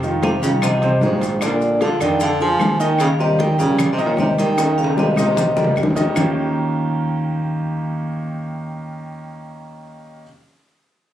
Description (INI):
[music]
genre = Afro-Cuban jazz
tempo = 152 BPM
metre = 4/4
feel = straight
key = Eb mixolydian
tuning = A4 = 440 Hz
[part]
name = clear upright piano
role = accompaniment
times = 0.0-10.2 s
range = C3 to Eb5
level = -23 LUFS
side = right 2 dB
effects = none
[part]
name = upright bass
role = bass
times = 0.0-10.2 s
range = Bb1 to F2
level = -24 LUFS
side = equal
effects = none
[part]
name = bongos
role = percussion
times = 0.0-6.3 s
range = none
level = -26 LUFS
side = left 5 dB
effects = none
[part]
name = congas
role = percussion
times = 0.0-6.3 s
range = none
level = -24 LUFS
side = left 1 dB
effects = none
[part]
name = maracas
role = percussion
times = 0.0-6.3 s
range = none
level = -35 LUFS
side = left 6 dB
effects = none
[part]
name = vibraphone with medium hard mallets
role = melody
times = 0.2-5.7 s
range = C5 to Ab5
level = -21 LUFS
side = left 1 dB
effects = slapback echo
[part]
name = warm baritone saxophone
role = second line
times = 0.2-5.7 s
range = Ab2 to F3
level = -21 LUFS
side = right 1 dB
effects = none
[part]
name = timbales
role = percussion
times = 0.2-6.3 s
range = none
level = -28 LUFS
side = right 2 dB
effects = none
[part]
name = claves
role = percussion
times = 0.6-6.3 s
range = none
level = -31 LUFS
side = left 3 dB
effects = none
[sound]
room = moderate club reverb, RT60 0.6 s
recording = recorded on a phone in the room, club ambience, compression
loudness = -16 LUFS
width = side -12 dB against mid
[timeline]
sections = 0.0-6.2 A section; 6.2-9.3 B section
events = drum fill 4.6-6.2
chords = 0.0 Fm7; 1.4 Bb7; 3.0 Eb6; 6.2 Eb9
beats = 0.23 0.63 1.02 | 1.42 1.81 2.21 2.60 | 3.00 3.39 3.79 4.18 | 4.58 4.97 5.37 5.76 | 6.16 6.55 6.95 7.34 | 7.74 8.13 8.53 8.92